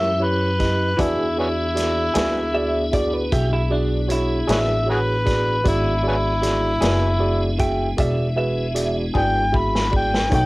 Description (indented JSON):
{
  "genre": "slow blues",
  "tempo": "51 BPM (dotted quarters)",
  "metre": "12/8",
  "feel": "straight",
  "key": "E mixolydian",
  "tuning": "A4 = 441 Hz",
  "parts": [
    { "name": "overdriven harmonica", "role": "melody", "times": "0.0-10.5 s", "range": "B3 to B5", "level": "-22 LUFS", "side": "left 1 dB", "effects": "cassette tape" },
    { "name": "electric guitar through a small old amp", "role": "accompaniment", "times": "0.0-10.5 s", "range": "B2 to G#4", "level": "-26 LUFS", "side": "left 2 dB", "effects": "tremolo, cassette tape" },
    { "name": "tine electric piano", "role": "accompaniment", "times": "0.0-10.5 s", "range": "D#4 to E5", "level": "-25 LUFS", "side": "right 2 dB", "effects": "overdrive, cassette tape" },
    { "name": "tonewheel organ", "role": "sustained chords", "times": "0.0-10.5 s", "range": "F#3 to A4", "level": "-28 LUFS", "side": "left 1 dB", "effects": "chorus vibrato, slow rotary speaker, cassette tape" },
    { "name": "upright bass", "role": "bass", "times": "0.0-10.5 s", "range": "E1 to F#2", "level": "-24 LUFS", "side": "equal", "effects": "none" },
    { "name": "vintage drum kit", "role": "drums", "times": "0.6-10.5 s", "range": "hi-hat, kick drum, snare drum", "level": "-25 LUFS", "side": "equal", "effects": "none" },
    { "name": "electric guitar through a small old amp", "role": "second line", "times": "2.5-8.9 s", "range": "D4 to G5", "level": "-26 LUFS", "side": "right 1 dB", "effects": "cassette tape" }
  ],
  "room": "light reverb",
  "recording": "home recording on cassette",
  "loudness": "-18 LUFS",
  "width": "side -22 dB against mid",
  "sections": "0.0-10.5 A section",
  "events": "drum fill 9.1-10.3",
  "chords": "0.0 A#dim7 (rootless); 1.0 E7"
}